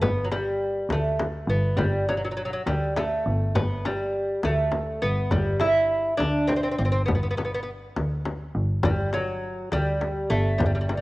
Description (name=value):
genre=Persian modal ensemble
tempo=68 BPM (dotted quarters)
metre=6/8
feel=straight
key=G dastgah mahur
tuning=A4 = 440 Hz
part: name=lute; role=melody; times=0.0-11.0 s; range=F#3 to E4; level=-25 LUFS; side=right 1 dB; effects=cassette tape
part: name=clear double bass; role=bass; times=0.0-11.0 s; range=G1 to D2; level=-27 LUFS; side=equal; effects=none
part: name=frame drum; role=percussion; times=0.0-11.0 s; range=none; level=-29 LUFS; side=left 2 dB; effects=none
part: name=tombak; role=percussion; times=5.3-11.0 s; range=none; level=-31 LUFS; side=equal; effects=none
room=light reverb, studio reverb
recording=home recording on cassette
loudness=-22 LUFS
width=side -19 dB against mid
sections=0.0-11.0 A section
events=none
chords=none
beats=| 0.03 0.91 | 1.79 2.67 | 3.56 4.44 | 5.32 6.20 | 7.08 7.96 | 8.84 9.72 | 10.60